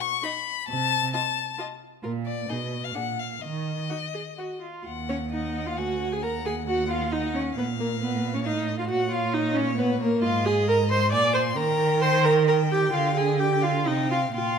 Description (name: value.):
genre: quick classical-period movement for string quartet.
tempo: 133 BPM.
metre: 3/4.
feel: rubato.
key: Eb minor, Eb major from 10.2 s.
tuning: A4 = 440 Hz.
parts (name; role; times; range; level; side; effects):
rich violin; melody; 0.0-14.6 s; Db5 to Db6; -31 LUFS; left 10 dB; none.
rich violin; second line; 0.2-14.6 s; Gb4 to D6; -31 LUFS; left 5 dB; none.
warm viola; accompaniment; 0.2-14.6 s; Bb3 to D5; -25 LUFS; right 2 dB; none.
warm cello; bass; 0.7-14.6 s; D2 to Eb3; -28 LUFS; right 5 dB; none.
room: moderate recital hall reverb, RT60 1.5 s.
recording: none.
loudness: -23 LUFS.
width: side -7 dB against mid.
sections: 0.0-4.9 A section; 4.9-14.6 A section.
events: none.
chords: 0.0 B; 0.7 F/C; 2.0 Bb; 2.5 Abm/Cb (rootless); 3.0 Bb5; 3.4 Ebm; 5.8 D; 6.2 Ebm; 7.6 Bb5; 8.5 F7/A; 8.9 Bbm; 10.2 Ab69; 11.1 Bb7; 11.6 Eb; 12.9 G5/D; 13.9 Cm.